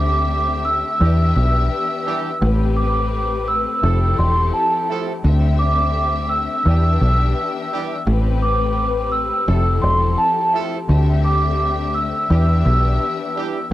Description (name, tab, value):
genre	hip hop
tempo	85 BPM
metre	4/4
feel	swing 59% on 16ths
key	unclear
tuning	A4 = 438 Hz
part	vibraphone with soft mallets	melody	0.0-13.7 s	A5 to E6	-20 LUFS	right 1 dB	high-pass filter, low-pass filter, cassette tape
part	warm studio string section	accompaniment	0.0-13.6 s	A2 to E5	-25 LUFS	left 7 dB	high-pass filter, low-pass filter, cassette tape
part	deep dub fingered electric bass	bass	0.0-13.0 s	E1 to E2	-17 LUFS	equal	tube saturation
part	clear horn section	stabs	1.0-13.6 s	E3 to A4	-29 LUFS	right 8 dB	high-pass filter, low-pass filter, cassette tape, analog delay
room	small room ambience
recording	home recording on cassette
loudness	-16 LUFS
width	side -14 dB against mid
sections	0.0-13.7 A section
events	none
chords	0.0 D7sus4; 1.0 Em7; 2.4 Am7; 3.8 Fmaj7; 5.2 D7sus4; 6.7 Em7; 8.1 Am7; 9.5 Fmaj7; 10.9 D7sus4; 12.3 Em7